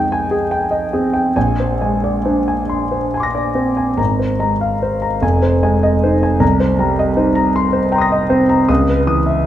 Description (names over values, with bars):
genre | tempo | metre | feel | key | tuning
classical, impressionist solo piano | 44-54 BPM (dotted quarters) | 6/8 | rubato | unclear | A4 = 438 Hz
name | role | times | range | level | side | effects
warm concert grand piano | solo | 0.0-9.5 s | F1 to Bb6 | -13 LUFS | equal | none
room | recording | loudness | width
moderate recital hall reverb, RT60 1.8 s | minimal, uncompressed stereo recording | -13 LUFS | side -11 dB against mid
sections
0.0-9.5 A section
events
none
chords
0.0 Fm9; 1.4 Bb9; 4.0 Ab69; 5.2 Fm7; 6.4 Cm7; 8.7 C#m9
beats
0.12 | 1.36 2.70 | 3.99 5.22 | 6.41 7.55 | 8.69